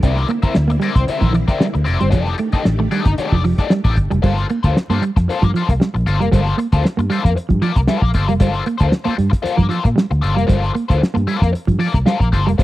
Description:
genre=funk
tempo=115 BPM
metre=4/4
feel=straight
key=G dorian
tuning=A4 = 440 Hz
part: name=crunchy overdriven guitar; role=accompaniment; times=0.0-12.6 s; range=Bb3 to E5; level=-22 LUFS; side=left 6 dB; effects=wah
part: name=string machine, full ensemble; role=sustained chords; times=0.0-4.2 s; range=D3 to G4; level=-29 LUFS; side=left 1 dB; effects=ensemble chorus
part: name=clean electric guitar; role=riff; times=0.0-12.6 s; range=E3 to C4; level=-20 LUFS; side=right 4 dB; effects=none
part: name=vintage muted fingered electric bass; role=bass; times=0.0-12.6 s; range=F1 to Bb2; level=-18 LUFS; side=equal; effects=none
part: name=cloth-damped thuddy drum kit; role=drums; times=0.0-12.6 s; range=crash cymbal, hi-hat, kick drum, snare drum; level=-16 LUFS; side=equal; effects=none
room=small room ambience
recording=dry, close 1970s-style studio recording, vinyl crackle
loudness=-14 LUFS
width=side -16 dB against mid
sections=0.0-4.2 A section; 4.2-12.6 B section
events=none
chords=0.0 C9; 2.1 F13; 4.2 Gm11

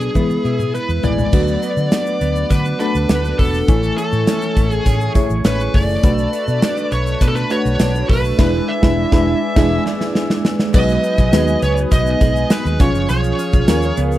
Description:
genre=1980s-style pop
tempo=102 BPM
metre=4/4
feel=straight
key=B major from 10.7 s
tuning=A4 = 442 Hz
part: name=high-gain lead guitar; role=melody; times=0.0-13.9 s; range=G#4 to E5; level=-22 LUFS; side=left 1 dB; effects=distortion, tape echo
part: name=FM electric piano with auto-pan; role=accompaniment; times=0.0-14.2 s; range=F#3 to G#5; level=-21 LUFS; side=equal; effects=phaser
part: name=direct-recorded clean electric guitar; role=riff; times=0.0-14.2 s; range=E3 to A4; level=-25 LUFS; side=right 4 dB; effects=analog chorus
part: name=vintage muted fingered electric bass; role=bass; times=0.0-14.2 s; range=E1 to E3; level=-19 LUFS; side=equal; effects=none
part: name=egg shaker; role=percussion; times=0.0-14.2 s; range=none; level=-41 LUFS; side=left 12 dB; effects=none
part: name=gated 80s drum kit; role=drums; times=0.2-14.1 s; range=crash cymbal, hi-hat, kick drum, snare drum, tambourine, toms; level=-17 LUFS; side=equal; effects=none
part: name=warm analog pad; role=sustained chords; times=1.3-14.2 s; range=A3 to E6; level=-28 LUFS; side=equal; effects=chorus
room=little or no reverb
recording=none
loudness=-14 LUFS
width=side -14 dB against mid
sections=0.0-1.3 A section; 1.3-10.7 B section; 10.7-14.2 C section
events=drum fill 0.2-1.3, 9.6-10.7; band accent 8.4-10.7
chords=0.2 E; 1.3 D6; 3.7 Amaj7; 6.0 Bm7; 8.4 E7; 10.7 B6; 12.8 C#

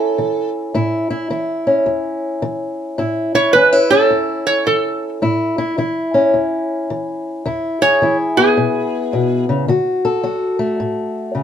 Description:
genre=acoustic country blues, solo or duo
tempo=107 BPM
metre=4/4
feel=swing 64% on 8ths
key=A major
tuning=A4 = 440 Hz
part: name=metal-body resonator slide guitar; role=melody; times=0.0-9.4 s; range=G#4 to C#5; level=-15 LUFS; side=right 3 dB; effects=none
part: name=fingerpicked old ladder-braced acoustic guitar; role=accompaniment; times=0.0-11.4 s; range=E2 to A4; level=-17 LUFS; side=left 2 dB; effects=none
room=moderate studio ambience, RT60 0.5 s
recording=band playing live in one room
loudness=-15 LUFS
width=side -9 dB against mid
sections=0.0-11.4 A section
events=none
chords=0.0 A; 7.4 E; 9.7 D

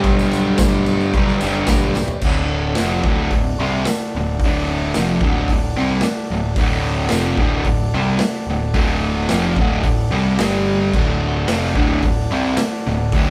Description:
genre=garage rock duo or trio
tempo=110 BPM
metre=4/4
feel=straight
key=D mixolydian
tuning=A4 = 440 Hz
part: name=combo organ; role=sustained chords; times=0.0-13.3 s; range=D4 to D5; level=-31 LUFS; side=equal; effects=none
part: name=fuzz guitar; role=riff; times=0.0-13.3 s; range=D2 to C4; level=-21 LUFS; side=equal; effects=distortion
part: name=growling picked electric bass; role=bass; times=0.0-13.3 s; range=D1 to C2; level=-28 LUFS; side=equal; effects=overdrive
part: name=raw garage drum kit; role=drums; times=0.0-13.3 s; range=crash cymbal, hi-hat, kick drum, ride cymbal, snare drum, toms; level=-23 LUFS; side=equal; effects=none
part: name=tambourine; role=percussion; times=0.1-12.7 s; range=none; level=-39 LUFS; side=equal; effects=none
room=light reverb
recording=band playing live in one room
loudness=-18 LUFS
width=mono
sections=0.0-2.2 A section; 2.2-13.3 B section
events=drum fill 2.0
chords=0.0 G/B; 2.2 D; 10.4 G5; 11.0 D

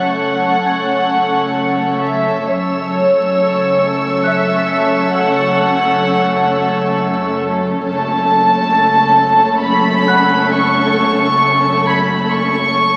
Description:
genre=cinematic, suspense film score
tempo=67 BPM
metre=3/4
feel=straight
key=F# minor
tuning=A4 = 439 Hz
part: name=warm symphonic violin section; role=melody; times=0.0-13.0 s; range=C#5 to C#6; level=-17 LUFS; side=equal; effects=none
part: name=warm symphonic violin section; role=second line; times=0.0-13.0 s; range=A4 to C#5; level=-22 LUFS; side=equal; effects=none
part: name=warm chamber viola section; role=accompaniment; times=0.0-13.0 s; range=A3 to C#4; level=-23 LUFS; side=equal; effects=none
part: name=rich symphonic cello section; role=bass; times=0.0-13.0 s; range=F#2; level=-26 LUFS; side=equal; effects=none
part: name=warm symphonic double bass section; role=bass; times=0.0-13.0 s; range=F#1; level=-29 LUFS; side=equal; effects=none
part: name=celesta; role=texture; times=0.0-13.0 s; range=F#5 to A6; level=-26 LUFS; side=equal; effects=none
part: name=warm chamber violin section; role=texture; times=0.0-7.4 s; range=C#6 to F#6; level=-26 LUFS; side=equal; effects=none
room=wet scoring stage reverb, RT60 1.6 s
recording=very old 78 rpm record, vinyl crackle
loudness=-14 LUFS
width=mono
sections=0.0-13.0 A section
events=none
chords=0.0 F#m

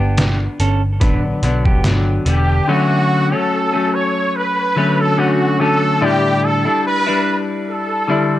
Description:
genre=indie pop, bedroom pop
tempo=72 BPM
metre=4/4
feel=swing 55% on 16ths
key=D major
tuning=A4 = 440 Hz
part: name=clean electric guitar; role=second line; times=0.0-1.8 s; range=B3 to B4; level=-25 LUFS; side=right 4 dB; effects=wide subtle chorus, tape echo, plate reverb
part: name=semi-hollow electric guitar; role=accompaniment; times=0.0-8.4 s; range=A2 to E4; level=-17 LUFS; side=left 2 dB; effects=wide subtle chorus, vibrato effect
part: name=vintage muted picked electric bass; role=bass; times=0.0-2.6 s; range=E1 to B1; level=-17 LUFS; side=equal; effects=tube saturation
part: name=trip hop sampler-style drum kit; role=drums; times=0.2-2.5 s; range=hi-hat, kick drum, snare drum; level=-17 LUFS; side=equal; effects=overdrive
part: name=clear trumpet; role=melody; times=2.3-8.4 s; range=F#4 to C#5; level=-18 LUFS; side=right 1 dB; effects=ensemble chorus, tape echo
room=light reverb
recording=dry, gritty hardware recording, cassette tape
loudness=-14 LUFS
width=side -14 dB against mid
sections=0.0-2.7 A section; 2.7-8.4 B section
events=none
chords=0.0 Gmaj7; 2.7 Dmaj7; 6.0 A7sus4

